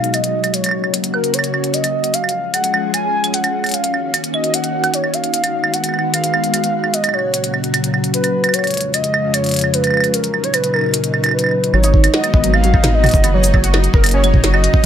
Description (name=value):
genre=IDM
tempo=150 BPM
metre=4/4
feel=straight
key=G# dorian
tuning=A4 = 442 Hz
part: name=warbly nostalgic lead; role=melody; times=0.0-14.9 s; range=A#4 to G#5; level=-20 LUFS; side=equal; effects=chorus, ping-pong delay
part: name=soft string machine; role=sustained chords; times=0.0-14.9 s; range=E#2 to G#4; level=-21 LUFS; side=equal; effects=ensemble chorus, vintage 12-bit sampler grit, sidechain pumping
part: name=glitchy drum kit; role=drums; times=0.0-14.9 s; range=cabasa, claves, hi-hat, snare drum, toms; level=-19 LUFS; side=right 1 dB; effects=overdrive
part: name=warbly dusty pluck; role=arpeggios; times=11.7-14.9 s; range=F#3 to A#4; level=-21 LUFS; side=right 2 dB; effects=analog chorus, digital delay
part: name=round analog bass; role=bass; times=11.7-14.7 s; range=F#1 to G#1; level=-15 LUFS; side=equal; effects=none
part: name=bubbling stepped-filter texture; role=texture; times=12.0-14.9 s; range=D#4 to D#5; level=-27 LUFS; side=equal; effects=chorus, built-in reverb, sidechain pumping
part: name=electronic kick drum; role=drums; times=11.9-14.8 s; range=none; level=-14 LUFS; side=equal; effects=none
room=light reverb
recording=none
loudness=-14 LUFS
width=side -9 dB against mid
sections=0.0-11.7 A section; 11.7-14.9 B section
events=none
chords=0.0 G#m7; 0.5 F#; 2.1 C#/E#; 3.7 D#m7; 5.3 G#m7; 6.9 F#; 8.5 C#/E#; 10.1 D#m7; 11.7 G#m7; 13.3 F#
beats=0.14 | 0.54 0.94 1.34 1.74 | 2.14 2.54 2.94 3.34 | 3.74 4.14 4.54 4.94 | 5.34 5.74 6.14 6.54 | 6.94 7.34 7.74 8.14 | 8.54 8.94 9.34 9.74 | 10.14 10.54 10.94 11.34 | 11.74 12.14 12.54 12.94 | 13.34 13.74 14.14 14.54